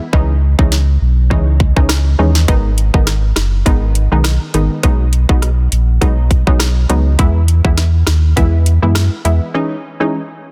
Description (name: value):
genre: dancehall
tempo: 102 BPM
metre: 4/4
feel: swing 56% on 16ths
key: unclear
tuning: A4 = 439 Hz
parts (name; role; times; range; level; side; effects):
- punchy chord stab; accompaniment; 0.0-10.2 s; D#3 to E4; -21 LUFS; equal; chorus
- sub bass with octave; bass; 0.1-9.4 s; F#1 to F#2; -15 LUFS; equal; none
- island pop drum kit; drums; 0.1-9.4 s; hi-hat, kick drum, rim click, snare drum; -17 LUFS; equal; overdrive
room: little or no reverb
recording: dense, heavily limited modern master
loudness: -13 LUFS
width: mono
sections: 0.0-10.5 A section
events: break 0.0-2.5, 9.5-10.5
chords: 0.1 C#madd9; 2.5 G#m; 4.8 B6; 7.2 E; 9.5 C#madd9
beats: | 0.13 0.72 1.31 1.90 | 2.48 3.07 3.66 4.25 | 4.84 5.42 6.01 6.60 | 7.19 7.78 8.37 8.95 | 9.54 10.13